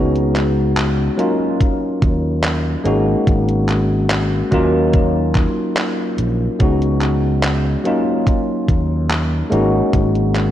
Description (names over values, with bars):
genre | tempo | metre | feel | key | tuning
vaporwave | 72 BPM | 4/4 | straight | Eb minor | A4 = 442 Hz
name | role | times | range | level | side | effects
bell-like tine electric piano | accompaniment | 0.0-10.5 s | Gb3 to Gb4 | -18 LUFS | left 1 dB | lush chorus, analog delay
sustaining fretless electric bass | bass | 0.0-10.5 s | Ab1 to Eb2 | -18 LUFS | equal | tube saturation
detuned 8-bit digital drum machine | drums | 0.2-10.5 s | handclaps, hi-hat | -24 LUFS | equal | overdrive
electronic kick drum | drums | 1.6-10.1 s | none | -17 LUFS | equal | overdrive
room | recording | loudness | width
moderate lush hall reverb, RT60 2.3 s | dreamy mix soaked in reverb, cassette tape | -14 LUFS | side -11 dB against mid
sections
0.0-10.5 A section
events
none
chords
0.0 Db7sus4; 1.2 Ebm9; 2.9 Ab7sus4; 4.5 Ebm9; 6.6 Db7sus4; 7.9 Ebm9; 9.5 Ab7sus4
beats
0.77 1.60 2.43 | 3.27 4.10 4.93 5.77 | 6.60 7.43 8.27 9.10 | 9.93